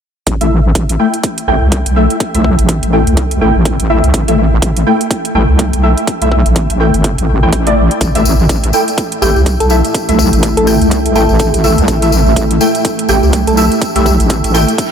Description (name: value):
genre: bass house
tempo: 124 BPM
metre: 4/4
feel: swing 59% on 16ths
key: A minor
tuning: A4 = 440 Hz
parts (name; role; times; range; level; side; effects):
- wobble bass; bass; 0.3-14.7 s; G1 to C2; -12 LUFS; equal; chorus, tube saturation, sidechain pumping
- electronic hi-hat; drums; 0.3-14.9 s; none; -21 LUFS; right 5 dB; none
- electronic kick drum; drums; 0.3-14.9 s; none; -18 LUFS; equal; high-pass filter on kick
- orchestra-hit-like synth stab; stabs; 0.4-14.6 s; A3 to G5; -14 LUFS; left 1 dB; built-in reverb, phaser, sidechain pumping, ping-pong delay
- deep dark ambient pad; sustained chords; 9.2-14.9 s; A3 to E5; -16 LUFS; right 2 dB; chorus, built-in reverb, sidechain pumping
- tambourine; percussion; 8.0-14.9 s; none; -23 LUFS; left 5 dB; none
- soft struck synth lead; melody; 9.2-14.1 s; G4 to A4; -18 LUFS; equal; chorus, tremolo, ping-pong delay
- reverse cymbal; sound effects; 14.8-14.9 s; none; -26 LUFS; right 8 dB; none
room: moderate huge ambient reverb, RT60 8.3 s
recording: dreamy mix soaked in reverb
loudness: -9 LUFS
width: side -8 dB against mid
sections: 0.3-14.9 A section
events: filter sweep on synth stab 0.3-14.9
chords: 0.3 A5